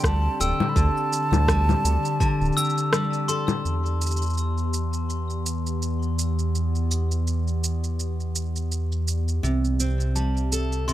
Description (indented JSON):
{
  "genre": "folktronica",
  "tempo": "83 BPM",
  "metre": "4/4",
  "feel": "swing 56% on 16ths",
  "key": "unclear",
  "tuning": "A4 = 440 Hz",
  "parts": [
    { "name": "mellow hollow silver concert flute", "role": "melody", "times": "0.0-2.9 s", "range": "G5 to B5", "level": "-28 LUFS", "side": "right 3 dB", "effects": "ping-pong delay" },
    { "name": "warbly tape-like pad", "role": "sustained chords", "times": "0.0-10.9 s", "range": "C3 to E5", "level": "-32 LUFS", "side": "left 1 dB", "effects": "chorus, built-in reverb" },
    { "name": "fingerpicked steel-string acoustic guitar", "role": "arpeggios", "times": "0.0-4.2, 9.4-10.9 s", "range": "C3 to A4", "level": "-28 LUFS", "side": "equal", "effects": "ping-pong delay" },
    { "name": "round analog bass", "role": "bass", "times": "0.0-10.9 s", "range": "D1 to E2", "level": "-24 LUFS", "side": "equal", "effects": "none" },
    { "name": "electronic kick drum", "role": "drums", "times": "0.0-2.4 s", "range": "none", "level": "-24 LUFS", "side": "equal", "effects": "overdrive" },
    { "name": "electronic shaker, rim click and congas", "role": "drums", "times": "0.0-10.9 s", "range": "none", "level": "-28 LUFS", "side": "left 1 dB", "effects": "overdrive" },
    { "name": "glockenspiel with brass mallets", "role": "second line", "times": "0.4-3.5, 10.2-10.9 s", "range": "A5 to E6", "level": "-31 LUFS", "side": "left 2 dB", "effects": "digital delay" }
  ],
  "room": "light reverb",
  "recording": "none",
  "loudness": "-22 LUFS",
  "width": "side -13 dB against mid",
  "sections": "0.0-3.7 A section; 3.7-10.9 B section",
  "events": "none",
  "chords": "0.0 D7sus4; 3.7 Em7; 9.4 C6"
}